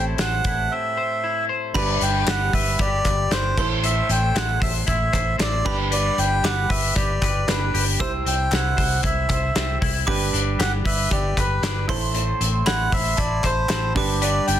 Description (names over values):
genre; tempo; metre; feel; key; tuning
jangly indie pop; 115 BPM; 4/4; straight; G major; A4 = 440 Hz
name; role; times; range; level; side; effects
melodica; melody; 0.0-14.6 s; B4 to G5; -25 LUFS; right 1 dB; none
bright upright piano; accompaniment; 0.0-14.6 s; C4 to C5; -32 LUFS; right 8 dB; none
twelve-string electric guitar; arpeggios; 0.0-14.6 s; A2 to C5; -28 LUFS; left 5 dB; none
vintage muted fingered electric bass; bass; 0.0-14.6 s; G1 to C2; -25 LUFS; equal; none
loose indie drum kit; drums; 0.2-14.6 s; crash cymbal, hi-hat, kick drum, snare drum; -24 LUFS; equal; none
glockenspiel with brass mallets; second line; 1.7-14.6 s; A5 to E6; -32 LUFS; right 3 dB; analog delay
group handclap; percussion; 2.3-13.8 s; none; -32 LUFS; left 2 dB; none
room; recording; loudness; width
studio ambience; dense, heavily limited modern master; -19 LUFS; side -11 dB against mid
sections
0.0-1.8 A section; 1.8-14.6 B section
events
none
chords
0.0 Am7; 1.8 G; 3.6 Am; 5.7 G; 8.0 C; 10.1 G; 11.9 Am; 14.0 G